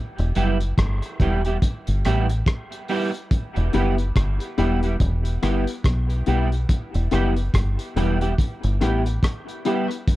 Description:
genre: dub reggae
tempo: 71 BPM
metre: 4/4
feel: swing 60% on 16ths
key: E minor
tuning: A4 = 437 Hz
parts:
  - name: deep dub fingered electric bass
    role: bass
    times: 0.2-9.2 s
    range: E1 to B1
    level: -21 LUFS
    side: equal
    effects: none
  - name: cloth-damped thuddy drum kit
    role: drums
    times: 0.2-10.2 s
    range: hi-hat, kick drum, rim click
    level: -23 LUFS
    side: equal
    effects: none
  - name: clean electric guitar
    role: accompaniment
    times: 0.4-9.9 s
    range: G3 to G4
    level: -27 LUFS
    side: right 4 dB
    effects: ensemble chorus, dub echo
  - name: dark upright piano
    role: stabs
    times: 3.7-9.9 s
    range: B3 to B4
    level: -28 LUFS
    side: left 5 dB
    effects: dub echo
room: small room ambience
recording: dark, warm production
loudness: -20 LUFS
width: side -17 dB against mid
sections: 0.0-10.2 A section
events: none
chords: 0.0 Em

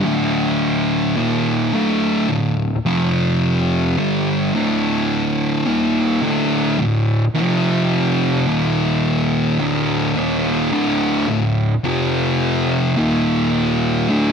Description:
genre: metal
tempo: 53 BPM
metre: 4/4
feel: straight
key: D phrygian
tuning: A4 = 440 Hz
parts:
  - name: thick fuzz guitar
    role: solo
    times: 0.0-14.3 s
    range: D2 to G3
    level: -16 LUFS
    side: equal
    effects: distortion
room: light reverb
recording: none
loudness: -16 LUFS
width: side -6 dB against mid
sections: 0.0-14.3 A section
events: none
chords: 0.0 D5; 2.8 F5; 4.0 D5; 7.3 F5; 8.5 Eb5; 9.6 D5; 11.8 F5; 13.0 Eb5

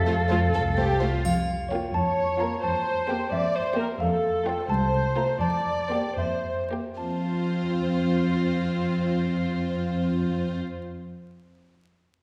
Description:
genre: cinematic, playful, whimsical film cue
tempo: 73-88 BPM (dotted quarters)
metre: 6/8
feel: straight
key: F major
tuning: A4 = 440 Hz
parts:
  - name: concert flute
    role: second line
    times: 0.0-1.0 s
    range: F5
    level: -34 LUFS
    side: equal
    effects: none
  - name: dark chamber cello section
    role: bass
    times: 0.0-10.6 s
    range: C2 to A4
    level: -30 LUFS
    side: equal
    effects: none
  - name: warm chamber double bass section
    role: bass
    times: 0.0-1.1 s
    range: C2 to F2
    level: -28 LUFS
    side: equal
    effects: none
  - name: warm chamber violin section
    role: melody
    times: 0.1-10.6 s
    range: C5 to Db5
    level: -40 LUFS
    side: equal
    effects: none
  - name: warm chamber violin section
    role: second line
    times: 0.1-10.6 s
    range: A3 to A4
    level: -34 LUFS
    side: equal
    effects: none
  - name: dark chamber viola section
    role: accompaniment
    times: 0.1-10.6 s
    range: A3 to D5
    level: -31 LUFS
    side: equal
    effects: none
  - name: triangle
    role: percussion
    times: 1.2-2.1 s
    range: none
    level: -48 LUFS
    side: equal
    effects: none
  - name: xylophone with soft rubber mallets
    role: melody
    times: 1.3-10.6 s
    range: E5 to Bb5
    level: -32 LUFS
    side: equal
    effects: none
room: wet scoring stage reverb, RT60 1.6 s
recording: heard from further back in the room, vinyl crackle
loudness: -26 LUFS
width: mono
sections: 0.0-1.2 A section; 1.2-7.0 B section; 7.0-10.2 C section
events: slowing down 3.3-7.0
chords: 0.0 F; 1.2 Bbm/F; 2.6 C7/F; 4.0 F; 5.4 C7/F; 7.0 F

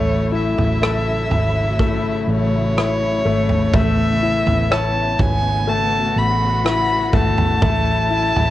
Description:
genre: pop ballad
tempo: 62 BPM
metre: 4/4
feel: straight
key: unclear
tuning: A4 = 441 Hz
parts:
  - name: dark violin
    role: melody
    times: 0.0-8.5 s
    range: C#5 to B5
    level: -21 LUFS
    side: equal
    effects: cassette tape
  - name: clear baby grand piano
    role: accompaniment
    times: 0.0-8.5 s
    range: A3 to C#5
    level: -22 LUFS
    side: left 6 dB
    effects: cassette tape
  - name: warm symphonic string section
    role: sustained chords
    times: 0.0-8.5 s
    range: C#3 to F#4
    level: -26 LUFS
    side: left 1 dB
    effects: cassette tape
  - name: vintage muted fingered electric bass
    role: bass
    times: 0.0-8.5 s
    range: G#1 to A1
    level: -21 LUFS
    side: right 1 dB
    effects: none
  - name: natural country drum kit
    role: drums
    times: 0.6-8.5 s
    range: kick drum, rim click, toms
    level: -20 LUFS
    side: right 2 dB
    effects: cassette tape
room: light reverb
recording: home recording on cassette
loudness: -15 LUFS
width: side -14 dB against mid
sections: 0.0-8.5 A section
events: none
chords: 0.0 F#m7; 3.7 Aadd9; 7.6 F#m7

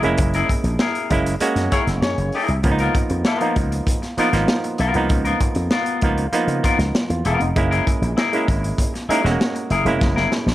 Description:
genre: funk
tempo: 98 BPM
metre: 4/4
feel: straight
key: Db mixolydian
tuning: A4 = 440 Hz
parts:
  - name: clean electric guitar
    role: accompaniment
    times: 0.0-10.5 s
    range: Cb4 to Bb4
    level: -24 LUFS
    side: left 4 dB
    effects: none
  - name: clav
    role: stabs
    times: 0.0-10.5 s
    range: F3 to Ab4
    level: -22 LUFS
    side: right 2 dB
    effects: auto-wah
  - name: slap bass with an envelope filter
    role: bass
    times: 0.0-10.5 s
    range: Fb1 to Db3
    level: -21 LUFS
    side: equal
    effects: none
  - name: crunchy breakbeat drum kit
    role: drums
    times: 0.0-10.5 s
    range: hi-hat, kick drum, snare drum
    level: -22 LUFS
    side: equal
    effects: none
  - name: warm horn section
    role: second line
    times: 1.7-2.5 s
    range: Bb3 to Db5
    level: -26 LUFS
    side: left 2 dB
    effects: none
room: light reverb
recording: none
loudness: -17 LUFS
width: side -15 dB against mid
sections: 0.0-10.5 A section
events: band accent 0.2-2.6; drum fill 10.0-10.5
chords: 0.0 Gb9; 2.6 Db13; 7.6 Gb9

